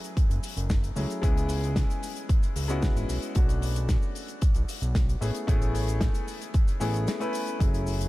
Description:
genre	nu-disco, nu disco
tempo	113 BPM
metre	4/4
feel	straight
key	unclear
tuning	A4 = 440 Hz
part	warm grand piano	accompaniment	0.0-8.1 s	F#3 to B4	-33 LUFS	left 2 dB	sidechain pumping, ping-pong delay
part	damped 70s drum kit	drums	0.0-8.1 s	cabasa, hi-hat, snare drum	-36 LUFS	left 2 dB	small room ambience
part	fat analog bass	bass	0.2-8.1 s	F#1 to C#2	-28 LUFS	equal	none
part	electronic kick drum	drums	0.2-7.7 s	none	-24 LUFS	equal	small room ambience
room	small room ambience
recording	none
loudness	-24 LUFS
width	side -18 dB against mid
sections	0.0-8.1 A section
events	break 7.1-7.6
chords	0.0 F#m7; 1.2 C#m7; 3.4 Bm7; 5.2 Amaj7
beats	0.17 0.70 | 1.23 1.76 2.29 2.82 | 3.35 3.89 4.42 4.95 | 5.48 6.01 6.54 7.07 | 7.60

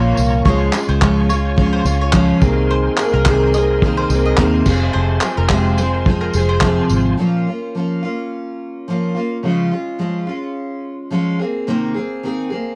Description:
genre	acoustic pop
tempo	107 BPM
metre	4/4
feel	swing 55% on 16ths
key	unclear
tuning	A4 = 439 Hz
part	picked steel-string acoustic guitar	accompaniment	0.0-12.8 s	F2 to Ab4	-20 LUFS	equal	double-tracked
part	bright tonewheel organ	sustained chords	0.0-7.2 s	Eb4 to Db6	-30 LUFS	equal	overdrive, chorus vibrato, fast rotary speaker
part	vintage muted fingered electric bass	bass	0.0-7.1 s	F1 to Eb2	-20 LUFS	equal	none
part	cloth-damped thuddy drum kit	drums	0.2-7.0 s	crash cymbal, handclaps, kick drum, tambourine	-20 LUFS	equal	none
part	mandolin	arpeggios	0.5-6.6 s	Bb4 to Eb5	-29 LUFS	equal	tape echo
room	light reverb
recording	worn, warbling old tape, cassette tape, warbly pitch drift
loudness	-17 LUFS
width	mono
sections	0.0-7.2 A section; 7.2-12.8 B section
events	none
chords	0.5 Db; 2.4 Abadd9/C; 4.7 Fm; 7.2 Bbm; 9.4 Db; 11.4 Abadd9/C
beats	| 0.46 1.02 1.58 2.14 | 2.70 3.26 3.82 4.38 | 4.93 5.50 6.05 6.62 | 7.18 7.74 8.30 8.86 | 9.42 9.98 10.55 11.11 | 11.67 12.23

